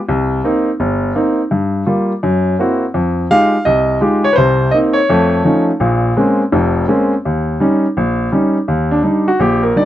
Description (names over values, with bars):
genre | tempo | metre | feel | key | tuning
jazz | 168 BPM | 4/4 | swing 65% on 8ths | unclear | A4 = 441 Hz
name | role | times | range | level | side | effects
warm baby grand piano | solo | 0.1-9.8 s | F1 to F5 | -12 LUFS | equal | none
room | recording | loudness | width
light reverb | dry, close 1970s-style studio recording | -12 LUFS | side -12 dB against mid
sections
0.0-8.7 A section; 8.7-9.8 B section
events
grand piano solo 8.7-9.8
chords
0.1 Cm7; 1.5 Gm7; 2.2 Gb7#11; 2.9 Fm9; 4.4 Cm7; 5.1 F7b13; 5.8 Bbm9; 7.2 Eb7; 8.7 Ebmaj7